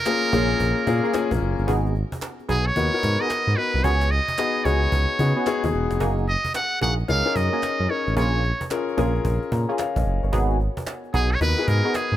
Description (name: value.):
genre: R&B, new jack swing.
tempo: 111 BPM.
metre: 4/4.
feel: swing 64% on 16ths.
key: unclear.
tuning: A4 = 440 Hz.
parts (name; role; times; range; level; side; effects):
trumpet with metal mute; melody; 0.0-12.2 s; G#4 to F#5; -24 LUFS; right 2 dB; digital delay.
warm grand piano; accompaniment; 0.1-12.2 s; A#3 to A#5; -26 LUFS; left 5 dB; none.
cajon; drums; 0.1-12.2 s; none; -33 LUFS; right 1 dB; none.
group handclap; percussion; 0.1-12.1 s; none; -38 LUFS; right 6 dB; none.
funky polysynth comp; stabs; 0.3-11.9 s; A#3 to G#4; -30 LUFS; right 2 dB; chorus.
smooth synth bass; bass; 0.3-12.2 s; E1 to C#3; -22 LUFS; equal; none.
room: light reverb.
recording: none.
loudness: -20 LUFS.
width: side -12 dB against mid.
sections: 0.0-12.2 A section.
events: none.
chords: 0.0 A#m7; 1.7 G#m7; 3.8 C#7sus4; 6.0 F#69; 8.2 A#m7; 10.3 G#m7.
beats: 0.06 0.60 1.14 | 1.68 2.22 2.76 3.30 | 3.84 4.38 4.92 5.46 | 6.00 6.54 7.08 7.62 | 8.17 8.71 9.25 9.79 | 10.33 10.87 11.41 11.95.